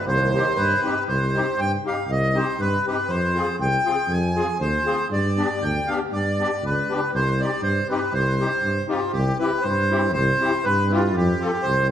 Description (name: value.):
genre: alpine folk, alpine dance band.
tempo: 119 BPM.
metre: 2/4.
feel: straight.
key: C harmonic minor.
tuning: A4 = 445 Hz.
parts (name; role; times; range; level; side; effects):
accordion; melody; 0.0-11.9 s; F4 to Ab5; -23 LUFS; equal; none.
clear euphonium; second line; 0.0-0.8 s; Eb2; -30 LUFS; right 2 dB; none.
mellow tuba; bass; 0.1-11.9 s; C2 to G2; -24 LUFS; equal; none.
musette accordion; accompaniment; 0.3-11.9 s; B3 to A4; -27 LUFS; left 3 dB; none.
room: wet recital hall reverb, RT60 1.3 s.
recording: recorded in a church or concert hall.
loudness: -20 LUFS.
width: side -10 dB against mid.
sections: 0.0-1.1 A section; 1.1-9.1 A section; 9.1-11.9 B section.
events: none.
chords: 0.0 Cm; 3.1 Fmadd9; 5.1 G; 7.1 Cm; 9.1 C; 11.1 F.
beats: | 0.07 0.57 | 1.08 1.59 | 2.09 2.60 | 3.10 3.60 | 4.10 4.61 | 5.11 5.62 | 6.12 6.63 | 7.13 7.63 | 8.13 8.63 | 9.14 9.64 | 10.14 10.64 | 11.14 11.63.